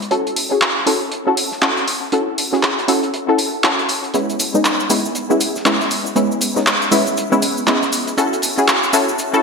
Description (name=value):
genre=deep house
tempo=119 BPM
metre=4/4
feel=swing 60% on 16ths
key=unclear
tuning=A4 = 439 Hz
part: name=cloth-damped thuddy drum kit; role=drums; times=0.0-9.3 s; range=hi-hat, snare drum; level=-30 LUFS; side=right 1 dB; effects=high-pass filter on hats, high-pass filter on snare, high-pass filter on room, gated reverb
part: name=filtered dub chord stab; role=stabs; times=0.1-9.4 s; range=G#3 to A4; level=-17 LUFS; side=equal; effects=chorus, vintage 12-bit sampler grit, ping-pong delay
part: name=deep house drum kit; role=drums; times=0.4-9.4 s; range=handclaps, hi-hat, shaker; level=-18 LUFS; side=equal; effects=overdrive, high-pass filter on hats, high-pass filter on snare, high-pass filter on perc, gated reverb
room=wet lush hall reverb, RT60 1.6 s, small room reverb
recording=bright 1980s-style digital production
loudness=-15 LUFS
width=side -4 dB against mid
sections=0.0-9.4 A section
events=build-up 0.0-9.4; filter sweep on synth stab 0.0-9.4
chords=0.1 C#madd11; 4.1 G#madd11; 8.2 B9sus4 (rootless)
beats=| 0.11 0.62 1.12 1.62 | 2.13 2.63 3.14 3.64 | 4.14 4.65 5.15 5.66 | 6.16 6.67 7.17 7.67 | 8.18 8.68 9.19